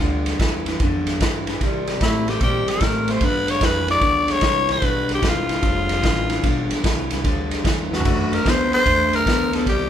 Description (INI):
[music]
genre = electric blues shuffle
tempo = 149 BPM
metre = 4/4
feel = swing 66% on 8ths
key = G mixolydian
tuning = A4 = 439 Hz
[part]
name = growling tenor saxophone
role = melody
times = 0.0-9.9 s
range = E4 to D5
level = -21 LUFS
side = left 2 dB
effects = none
[part]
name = electric guitar through a small old amp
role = riff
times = 0.0-9.9 s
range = G2 to B3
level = -24 LUFS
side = left 1 dB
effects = none
[part]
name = upright bass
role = bass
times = 0.0-9.9 s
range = E1 to C3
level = -28 LUFS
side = right 1 dB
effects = none
[part]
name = vintage drum kit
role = drums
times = 0.0-9.8 s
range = crash cymbal, kick drum, ride cymbal, snare drum, toms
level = -22 LUFS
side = right 1 dB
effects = none
[sound]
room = moderate large studio reverb, RT60 1.5 s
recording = band playing live in one room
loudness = -17 LUFS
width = side -10 dB against mid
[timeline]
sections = 0.0-9.9 A section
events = drum fill 7.9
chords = 0.0 G7(no3); 1.6 C5; 3.2 G7; 8.1 D7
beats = | 0.00 0.40 0.81 1.21 | 1.61 2.02 2.42 2.82 | 3.22 3.63 4.03 4.43 | 4.84 5.24 5.64 6.04 | 6.45 6.85 7.25 7.66 | 8.06 8.46 8.86 9.27 | 9.67